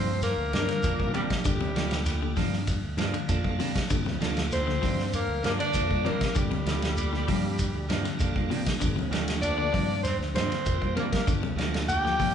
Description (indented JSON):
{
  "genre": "afrobeat",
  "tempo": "98 BPM",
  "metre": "4/4",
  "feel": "straight",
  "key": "G minor",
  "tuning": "A4 = 441 Hz",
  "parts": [
    { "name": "raspy alto saxophone", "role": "melody", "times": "0.0-12.3 s", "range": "G4 to G5", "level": "-31 LUFS", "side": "left 1 dB", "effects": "none" },
    { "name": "clear tenor saxophone", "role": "second line", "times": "0.0-12.3 s", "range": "G3 to G4", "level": "-35 LUFS", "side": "right 2 dB", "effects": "none" },
    { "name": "electric guitar at the edge of break-up", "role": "arpeggios", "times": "0.0-12.3 s", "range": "C3 to F3", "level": "-35 LUFS", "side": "left 6 dB", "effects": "none" },
    { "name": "semi-hollow electric guitar", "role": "stabs", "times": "0.0-12.3 s", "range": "F3 to D4", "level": "-35 LUFS", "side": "right 5 dB", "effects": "spring reverb" },
    { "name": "modern bright fingered electric bass", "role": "bass", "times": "0.0-12.3 s", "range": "D2 to G3", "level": "-32 LUFS", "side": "equal", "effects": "none" },
    { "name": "vintage drum kit", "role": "drums", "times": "0.2-12.3 s", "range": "hi-hat, kick drum, ride cymbal, snare drum", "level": "-30 LUFS", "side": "equal", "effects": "none" },
    { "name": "shekere", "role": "percussion", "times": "0.2-12.3 s", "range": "none", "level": "-37 LUFS", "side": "equal", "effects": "none" },
    { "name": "claves", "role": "percussion", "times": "0.5-12.3 s", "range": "none", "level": "-48 LUFS", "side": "left 2 dB", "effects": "none" },
    { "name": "congas", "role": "percussion", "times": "0.5-12.3 s", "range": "none", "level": "-36 LUFS", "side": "left 2 dB", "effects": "none" },
    { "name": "tonewheel organ", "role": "accompaniment", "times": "0.8-12.2 s", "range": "Bb3 to Bb4", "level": "-39 LUFS", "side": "equal", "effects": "slow rotary speaker, overdrive, chorus vibrato" }
  ],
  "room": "wet large studio reverb, RT60 1.5 s",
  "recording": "band playing live in one room, nothing above 10.5 kHz",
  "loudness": "-25 LUFS",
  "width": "side -8 dB against mid",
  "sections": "0.0-12.3 A section",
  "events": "none",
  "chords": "0.0 Gm7"
}